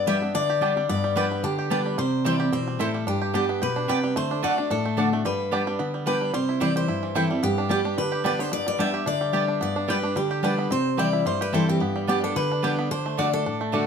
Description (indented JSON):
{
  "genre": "bluegrass",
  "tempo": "220 BPM",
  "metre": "4/4",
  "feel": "swing 54% on 8ths",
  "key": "G major",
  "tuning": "A4 = 441 Hz",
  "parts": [
    { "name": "bluegrass banjo", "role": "melody", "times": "0.0-13.9 s", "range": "E3 to G4", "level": "-31 LUFS", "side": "right 5 dB", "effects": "none" },
    { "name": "picked steel-string acoustic guitar", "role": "melody", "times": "0.0-13.9 s", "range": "G4 to E5", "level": "-26 LUFS", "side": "left 2 dB", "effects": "none" },
    { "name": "picked steel-string acoustic guitar", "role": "accompaniment", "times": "0.0-13.9 s", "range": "G2 to G4", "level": "-26 LUFS", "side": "left 1 dB", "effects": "none" },
    { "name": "mandolin", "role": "stabs", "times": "0.1-13.8 s", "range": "A3 to G5", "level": "-29 LUFS", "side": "right 4 dB", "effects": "none" }
  ],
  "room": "moderate studio reverb, RT60 1.0 s",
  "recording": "none",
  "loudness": "-22 LUFS",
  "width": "side -6 dB against mid",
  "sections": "0.0-6.3 A section; 6.3-13.9 A section",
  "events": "none",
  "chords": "0.0 G; 2.0 C; 3.1 G; 4.2 D; 5.3 G; 6.3 C; 7.4 G; 10.7 C; 11.8 G; 12.9 D"
}